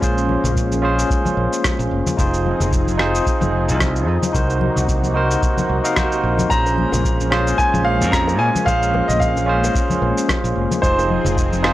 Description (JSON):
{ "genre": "sunset chillout", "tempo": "111 BPM", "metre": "4/4", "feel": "swing 56% on 16ths", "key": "Bb minor", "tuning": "A4 = 442 Hz", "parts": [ { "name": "barky tine electric piano", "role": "accompaniment", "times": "0.0-11.7 s", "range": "Db4 to F5", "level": "-21 LUFS", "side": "equal", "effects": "auto-pan, analog delay" }, { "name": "lush unison pad", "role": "sustained chords", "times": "0.0-11.7 s", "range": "C3 to Ab4", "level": "-25 LUFS", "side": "equal", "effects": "chorus, phaser" }, { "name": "modern bright fingered electric bass", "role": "bass", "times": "0.0-11.7 s", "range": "F1 to Bb2", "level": "-21 LUFS", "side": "equal", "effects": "none" }, { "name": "electronic cabasa and rim click", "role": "drums", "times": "0.0-11.7 s", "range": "none", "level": "-24 LUFS", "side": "equal", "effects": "none" }, { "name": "electronic kick drum", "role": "drums", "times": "0.0-11.5 s", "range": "none", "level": "-22 LUFS", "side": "equal", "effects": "none" }, { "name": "congas and bongos", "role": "percussion", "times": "0.3-11.7 s", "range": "none", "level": "-26 LUFS", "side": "left 3 dB", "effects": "none" }, { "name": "clear grand piano", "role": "melody", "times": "6.5-11.7 s", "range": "C5 to Bb5", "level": "-21 LUFS", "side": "equal", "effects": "tape echo" } ], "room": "light reverb", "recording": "dry, gritty hardware recording", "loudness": "-15 LUFS", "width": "side -15 dB against mid", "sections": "0.0-11.7 A section", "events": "none", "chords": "0.0 Bbm7; 2.2 Fm7; 4.3 Cm7b5; 6.5 Bbm7; 10.8 Fm7" }